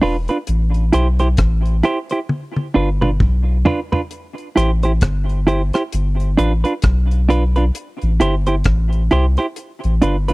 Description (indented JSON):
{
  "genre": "roots reggae",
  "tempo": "66 BPM",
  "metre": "4/4",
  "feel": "swing 60% on 16ths",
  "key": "A minor",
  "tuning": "A4 = 441 Hz",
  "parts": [
    { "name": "clean electric guitar", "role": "accompaniment", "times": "0.0-10.3 s", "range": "D4 to C5", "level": "-18 LUFS", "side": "right 2 dB", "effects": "tape echo" },
    { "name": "soft dub sub bass", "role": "bass", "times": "0.0-10.3 s", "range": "E1 to C2", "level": "-16 LUFS", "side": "equal", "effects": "none" },
    { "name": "deep reggae drum kit", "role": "drums", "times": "0.0-10.3 s", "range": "hi-hat, kick drum, rim click, toms", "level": "-18 LUFS", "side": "equal", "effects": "none" }
  ],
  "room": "little or no reverb",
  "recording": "dry, close 1970s-style studio recording",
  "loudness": "-15 LUFS",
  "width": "side -22 dB against mid",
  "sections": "0.0-4.1 A section; 4.1-10.3 B section",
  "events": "drum fill 2.3-4.1",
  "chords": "0.5 Am7; 2.3 G7; 4.1 Am7; 5.9 G7; 7.8 Am7; 9.6 G7"
}